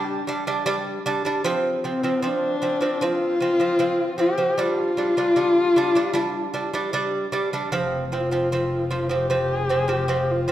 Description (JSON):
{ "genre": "mongolian traditional, Mongolian folk", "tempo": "76 BPM", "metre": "4/4", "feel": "straight", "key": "unclear", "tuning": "A4 = 439 Hz", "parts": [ { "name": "warm horsehead fiddle", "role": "melody", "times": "0.0-10.5 s", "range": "C4 to G4", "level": "-22 LUFS", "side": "left 2 dB", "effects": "none" }, { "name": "lute", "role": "arpeggios", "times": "0.0-10.5 s", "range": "F3 to D4", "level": "-23 LUFS", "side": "right 2 dB", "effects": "none" }, { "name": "dark double bass", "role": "drone", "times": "7.7-10.5 s", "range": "F1", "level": "-28 LUFS", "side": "left 1 dB", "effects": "none" } ], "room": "wet recital hall reverb, RT60 1.7 s", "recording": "none", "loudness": "-20 LUFS", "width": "side -12 dB against mid", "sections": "0.0-7.7 A section; 7.7-10.5 B section", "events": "none", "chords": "0.0 G5; 1.5 F5; 4.6 G5; 7.7 F5", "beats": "0.67 | 1.45 2.24 3.02 3.81 | 4.59 5.38 6.16 6.95 | 7.73 8.52 9.30 10.09" }